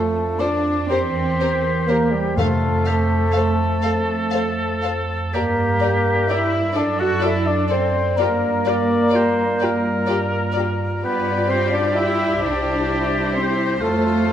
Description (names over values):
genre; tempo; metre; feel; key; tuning
classical, slow romantic movement for symphony orchestra; 42 BPM (dotted quarters); 6/8; uneven beats, rubato; F major; A4 = 442 Hz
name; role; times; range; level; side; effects
mellow hollow concert flute; second line; 0.0-14.3 s; G5 to F#6; -28 LUFS; left 2 dB; none
warm clarinet; second line; 0.0-14.3 s; G4 to F#5; -29 LUFS; left 3 dB; none
dark bassoon; accompaniment; 0.0-14.3 s; G3 to F#4; -24 LUFS; right 1 dB; none
mellow French horn section; sustained chords; 0.0-14.3 s; E4 to D5; -28 LUFS; left 3 dB; none
dark studio cello section; bass; 0.0-14.3 s; G3 to F#4; -25 LUFS; right 2 dB; none
dark symphonic double bass section; bass; 0.0-14.3 s; C2 to G2; -24 LUFS; right 2 dB; none
warm studio violin section; melody; 0.4-14.3 s; C5 to F5; -28 LUFS; left 5 dB; none
dark studio violin section; second line; 0.4-14.3 s; G4 to C5; -32 LUFS; left 3 dB; none
dark studio viola section; accompaniment; 0.4-14.3 s; E4 to A4; -31 LUFS; left 1 dB; none
clear oboe; second line; 0.9-14.3 s; F4 to D5; -27 LUFS; equal; none
timpani; percussion; 2.4-3.8 s; F2; -25 LUFS; left 1 dB; none
room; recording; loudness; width
moderate scoring stage reverb, RT60 1.9 s; none; -17 LUFS; side -10 dB against mid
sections
0.0-14.3 A section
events
none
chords
0.0 F; 0.9 C7/E; 2.4 F; 5.3 Gm; 6.8 D7/F#; 8.2 Gm7; 11.0 G7; 12.4 C; 13.8 F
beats
0.90 | 2.37 3.83 | 5.32 6.75 | 8.18 9.61 | 11.03 12.43 | 13.82